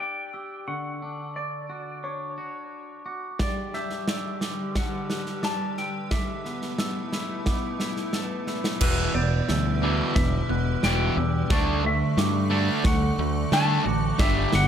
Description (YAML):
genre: post-rock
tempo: 89 BPM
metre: 4/4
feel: straight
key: unclear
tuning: A4 = 440 Hz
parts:
  - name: clean lap steel guitar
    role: melody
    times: 0.0-14.7 s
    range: B4 to A5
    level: -31 LUFS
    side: left 2 dB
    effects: analog delay
  - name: glockenspiel with rubber mallets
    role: arpeggios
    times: 0.0-14.7 s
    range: C#6 to G7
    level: -35 LUFS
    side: right 3 dB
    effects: analog delay
  - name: twangy electric guitar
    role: arpeggios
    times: 0.0-14.7 s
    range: D3 to D5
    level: -35 LUFS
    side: left 3 dB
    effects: spring reverb, analog delay
  - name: icy glass pad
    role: sustained chords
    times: 4.0-14.7 s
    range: B2 to D5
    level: -34 LUFS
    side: equal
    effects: chorus, built-in reverb
  - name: big rock drum kit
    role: drums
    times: 3.4-14.7 s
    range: crash cymbal, kick drum, snare drum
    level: -28 LUFS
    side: equal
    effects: none
  - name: overdriven semi-hollow guitar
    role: riff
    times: 8.8-14.7 s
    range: E2 to D4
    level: -26 LUFS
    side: right 2 dB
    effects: none
  - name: growling fingered electric bass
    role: bass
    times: 8.8-14.7 s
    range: E1 to D3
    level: -26 LUFS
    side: equal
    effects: overdrive
room: light reverb, small room ambience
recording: none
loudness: -23 LUFS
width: side -9 dB against mid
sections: 0.0-8.8 A section; 8.8-14.7 B section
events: drum fill 8.5-8.8, 8.8-14.7; build-up 8.8-14.7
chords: 0.0 Em7; 0.7 Dmaj7; 3.4 Gmaj7; 6.1 Asus2; 8.8 Em7; 11.5 Dmaj7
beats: | 0.67 1.35 2.04 2.72 | 3.40 4.08 4.76 5.44 | 6.11 6.79 7.47 8.14 | 8.82 9.49 10.17 10.84 | 11.51 12.18 12.86 13.53 | 14.20